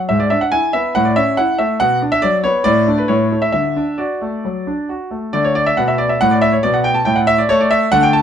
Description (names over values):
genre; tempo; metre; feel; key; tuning
classical-period piano sonatina; 139 BPM; 4/4; straight; D major; A4 = 440 Hz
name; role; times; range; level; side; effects
clear concert grand piano; solo; 0.0-8.2 s; G#2 to A5; -13 LUFS; equal; none
room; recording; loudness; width
light reverb; dark, warm production; -13 LUFS; side -8 dB against mid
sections
0.0-5.3 A section; 5.3-8.2 A section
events
none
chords
0.1 E7/G#; 0.9 A; 1.8 Bm; 2.7 D5/A; 3.1 A; 3.5 D; 5.3 D5; 7.1 N.C.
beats
| 0.09 0.52 0.95 1.38 | 1.80 2.23 2.65 3.09 | 3.54 3.99 4.44 4.89 | 5.34 5.78 6.21 6.64 | 7.07 7.50 7.93